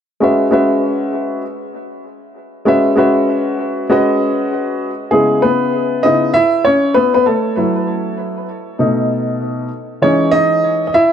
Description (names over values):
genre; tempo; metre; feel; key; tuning
hip hop; 98 BPM; 4/4; swing 65% on 16ths; C# minor; A4 = 444 Hz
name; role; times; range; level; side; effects
warm upright piano; solo; 0.2-11.1 s; B2 to E5; -13 LUFS; equal; tape echo
room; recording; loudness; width
moderate plate reverb, RT60 3.5 s; none; -12 LUFS; side -8 dB against mid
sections
0.2-5.1 A section; 5.1-11.1 B section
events
upright piano solo 5.1-11.1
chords
0.2 C#m7; 3.9 B69; 5.1 C#m9; 7.6 F#m7; 8.8 B7; 10.0 Emaj7